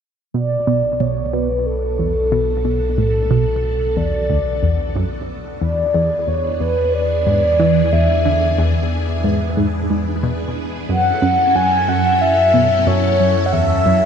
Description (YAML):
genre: ambient, sequencer-driven space music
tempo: 91 BPM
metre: 4/4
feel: straight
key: B dorian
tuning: A4 = 440 Hz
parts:
  - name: mellow horn-like synth lead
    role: melody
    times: 0.3-14.1 s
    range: A4 to G#5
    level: -18 LUFS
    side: left 1 dB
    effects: chorus, shimmer reverb, tape echo
  - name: phased string machine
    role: sustained chords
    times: 0.3-14.1 s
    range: E3 to A4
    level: -26 LUFS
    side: equal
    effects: ensemble chorus, phaser, shimmer reverb
  - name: tight sequenced synth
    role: riff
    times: 0.3-14.0 s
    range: D2 to E3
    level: -20 LUFS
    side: right 1 dB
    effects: chorus, phaser, tape echo
  - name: warm sub bass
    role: bass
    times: 0.3-14.1 s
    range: B1 to F#2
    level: -22 LUFS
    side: equal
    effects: none
room: wet cathedral reverb, RT60 5.2 s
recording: in a vast, echoing space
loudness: -15 LUFS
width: side -7 dB against mid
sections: 0.3-14.1 A section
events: fade-in on string machine 0.3-14.1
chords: 0.3 Bm7; 5.6 E7; 10.9 F#m7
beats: | 0.34 1.00 1.66 2.32 | 2.98 3.64 4.30 4.96 | 5.62 6.28 6.94 7.60 | 8.26 8.92 9.57 10.23 | 10.89 11.55 12.21 12.87 | 13.53